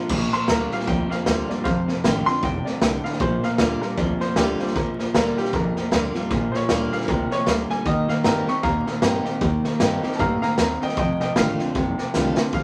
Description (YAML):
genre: rockabilly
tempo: 154 BPM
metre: 4/4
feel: swing 59% on 8ths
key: Bb major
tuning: A4 = 438 Hz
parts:
  - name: picked steel-string acoustic guitar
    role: accompaniment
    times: 0.0-12.6 s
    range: F2 to G4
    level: -29 LUFS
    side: equal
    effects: none
  - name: electric guitar through a small old amp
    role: riff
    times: 0.0-12.5 s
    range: F2 to C4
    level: -29 LUFS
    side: equal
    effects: spring reverb
  - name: upright bass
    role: bass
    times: 0.0-12.6 s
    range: F1 to G2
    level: -32 LUFS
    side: equal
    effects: none
  - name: raw garage drum kit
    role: drums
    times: 0.1-12.6 s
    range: crash cymbal, hi-hat, kick drum, snare drum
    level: -26 LUFS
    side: equal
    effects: none
  - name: warm upright piano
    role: melody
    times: 0.3-12.6 s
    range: G4 to Db6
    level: -29 LUFS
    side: equal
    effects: none
room: moderate studio reverb, RT60 0.7 s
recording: vinyl crackle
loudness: -22 LUFS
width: mono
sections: 0.1-12.5 A section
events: drum fill 12.1-12.5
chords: 0.1 Bb; 1.6 F7; 3.2 Bb; 7.9 Eb; 11.0 F7